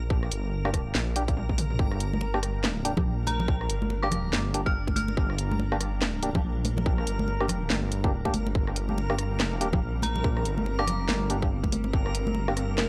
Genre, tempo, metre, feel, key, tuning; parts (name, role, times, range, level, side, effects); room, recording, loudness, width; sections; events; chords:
deep dubstep; 142 BPM; 4/4; swing 59% on 16ths, half-time; G minor; A4 = 438 Hz
dark detuned saw bass; bass; 0.0-12.9 s; G1 to Bb1; -32 LUFS; equal
backwards swelling texture; texture; 0.0-12.9 s; Bb4; -40 LUFS; equal; built-in reverb
electronic kick drum; drums; 0.1-12.0 s; -30 LUFS; equal
garage drum kit; drums; 0.2-12.9 s; hi-hat, rim click, snare drum, toms; -33 LUFS; equal
percussive organ stab; stabs; 0.6-12.5 s; Bb3 to G4; -36 LUFS; equal; chorus, vintage 12-bit sampler grit, dub echo
granular cloud pad; sustained chords; 2.3-12.9 s; G3 to D4; -43 LUFS; equal
congas; percussion; 2.1-12.9 s; -35 LUFS; equal
dark detuned synth bell; melody; 3.3-5.3, 10.0-11.1 s; Bb5 to F6; -37 LUFS; equal; chorus, dub echo
light reverb; dry, gritty hardware recording; -27 LUFS; mono
0.0-12.9 A section
drum fill 1.4-1.8
0.0 Gm